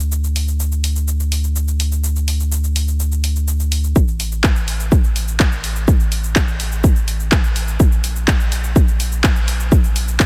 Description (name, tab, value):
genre	melodic techno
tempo	125 BPM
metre	4/4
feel	straight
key	unclear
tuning	A4 = 440 Hz
part	round analog bass	bass	0.0-10.3 s	A1 to D2	-22 LUFS	equal	sidechain pumping
part	house drum kit	drums	0.0-10.3 s	handclaps, hi-hat, shaker	-25 LUFS	equal	high-pass filter on perc, high-pass filter on hats, high-pass filter on snare
part	electronic kick drum	drums	4.0-10.3 s	none	-16 LUFS	equal	none
room	digital ambience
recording	none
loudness	-17 LUFS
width	mono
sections	0.0-10.3 A section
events	build-up 0.0-10.3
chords	none